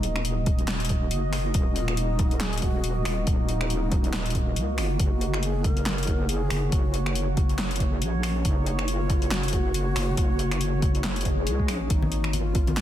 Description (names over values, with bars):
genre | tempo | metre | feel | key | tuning
deep dubstep | 139 BPM | 4/4 | swing 57% on 16ths, half-time | unclear | A4 = 440 Hz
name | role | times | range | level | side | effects
breathy mellow long shakuhachi | melody | 0.0-12.8 s | Db4 to Bb4 | -35 LUFS | equal | dub echo
deep dark ambient pad | sustained chords | 0.0-12.8 s | Bb3 to Eb5 | -33 LUFS | equal | chorus, built-in reverb
wobble bass | bass | 0.0-12.8 s | Eb1 to Db2 | -27 LUFS | equal | chorus
deep house drum kit | drums | 0.0-12.8 s | finger snaps, handclaps, hi-hat, snare drum | -31 LUFS | left 1 dB | overdrive
electronic kick drum | drums | 0.5-12.7 s | none | -25 LUFS | equal | overdrive
swell | sound effects | 11.2-11.9 s | none | -35 LUFS | left 4 dB | none
congas | percussion | 12.0-12.8 s | none | -32 LUFS | left 4 dB | none
room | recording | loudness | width
little or no reverb | dense, heavily limited modern master | -23 LUFS | side -12 dB against mid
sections
0.0-12.8 A section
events
swell 11.2-11.9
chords
0.0 Ebm; 5.0 Gb; 11.9 Abmadd9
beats
0.25 0.68 1.11 | 1.54 1.98 2.41 2.84 | 3.27 3.70 4.13 4.57 | 5.00 5.43 5.86 6.29 | 6.72 7.16 7.59 8.02 | 8.45 8.88 9.31 9.75 | 10.18 10.61 11.04 11.47 | 11.90 12.34 12.77